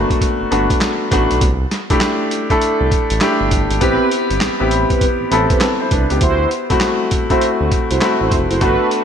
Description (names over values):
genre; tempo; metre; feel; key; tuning
R&B, new jack swing; 100 BPM; 4/4; swing 64% on 16ths; unclear; A4 = 440 Hz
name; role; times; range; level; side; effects
clear concert grand piano; accompaniment; 0.0-9.0 s; A3 to C5; -16 LUFS; left 1 dB; none
smooth synth bass; bass; 0.0-8.8 s; F1 to D2; -20 LUFS; equal; none
boom bap sampler-style drum kit; drums; 0.1-9.0 s; handclaps, hi-hat, kick drum, snare drum; -19 LUFS; right 1 dB; none
mellow synth brass; stabs; 3.8-8.9 s; C4 to C5; -21 LUFS; right 3 dB; chorus, digital delay
room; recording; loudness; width
light reverb; none; -13 LUFS; side -8 dB against mid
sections
0.0-9.0 A section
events
none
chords
0.0 Gmaj9; 1.4 C6; 3.8 Am9; 6.2 D9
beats
0.21 0.81 | 1.41 2.01 2.61 3.21 | 3.81 4.41 5.01 5.61 | 6.21 6.81 7.41 8.01 | 8.61